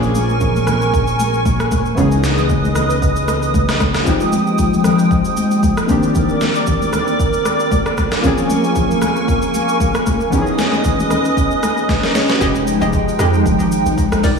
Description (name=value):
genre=amapiano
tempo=115 BPM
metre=4/4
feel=swing 55% on 16ths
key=F minor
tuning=A4 = 440 Hz
part: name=warm analog keys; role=accompaniment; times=0.0-12.5 s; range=D3 to Eb5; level=-20 LUFS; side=left 2 dB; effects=chorus
part: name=hollow soft pad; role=sustained chords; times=0.0-14.4 s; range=C3 to Eb6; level=-18 LUFS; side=equal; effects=ensemble chorus, sidechain pumping
part: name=plucky analog bass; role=bass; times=0.0-4.0 s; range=Bb1 to Db2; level=-19 LUFS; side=right 1 dB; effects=none
part: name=deep house drum kit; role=drums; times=0.0-14.4 s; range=hi-hat, kick drum, rim click, shaker, snare drum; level=-19 LUFS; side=equal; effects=none
part: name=congas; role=percussion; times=0.2-12.3 s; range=none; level=-24 LUFS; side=equal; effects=none
part: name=analog pluck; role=stabs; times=12.4-14.4 s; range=Eb4 to Eb5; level=-22 LUFS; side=left 4 dB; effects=chorus, tape echo
part: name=hollow log drum bass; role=bass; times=12.4-14.4 s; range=F1 to F2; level=-19 LUFS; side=right 1 dB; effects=none
room=wet lush hall reverb, RT60 1.8 s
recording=dreamy mix soaked in reverb, small room ambience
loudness=-13 LUFS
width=side -5 dB against mid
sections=0.0-12.4 A section; 12.4-14.4 B section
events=drum fill 11.9-12.4; drop 12.4-14.4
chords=0.0 Bbm9; 2.0 Dbm9; 4.1 Fm9; 5.9 Cm9; 8.2 Bbm9; 10.3 Dbm9; 12.4 Fm9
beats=0.41 0.93 1.46 | 1.98 2.50 3.02 3.54 | 4.07 4.59 5.11 5.63 | 6.15 6.67 7.20 7.72 | 8.24 8.76 9.28 9.80 | 10.33 10.85 11.37 11.89 | 12.41 12.93 13.46 13.98